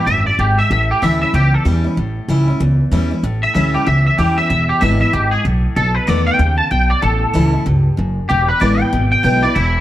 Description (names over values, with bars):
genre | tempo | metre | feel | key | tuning
rock | 190 BPM | 4/4 | swing 61% on 8ths | unclear | A4 = 438 Hz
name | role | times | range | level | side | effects
twangy electric guitar | melody | 0.0-9.8 s | E4 to A5 | -16 LUFS | equal | ensemble chorus, analog delay
picked steel-string acoustic guitar | accompaniment | 0.0-9.8 s | E2 to F#4 | -19 LUFS | left 1 dB | none
upright bass | bass | 0.1-9.8 s | E1 to E2 | -16 LUFS | equal | none
room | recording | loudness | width
light reverb, small room ambience | none | -13 LUFS | side -13 dB against mid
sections
0.0-9.8 A section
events
clean electric guitar solo 0.0-9.8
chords
0.0 E; 0.7 A7; 4.5 E7; 5.8 B7; 7.0 A7; 8.3 E7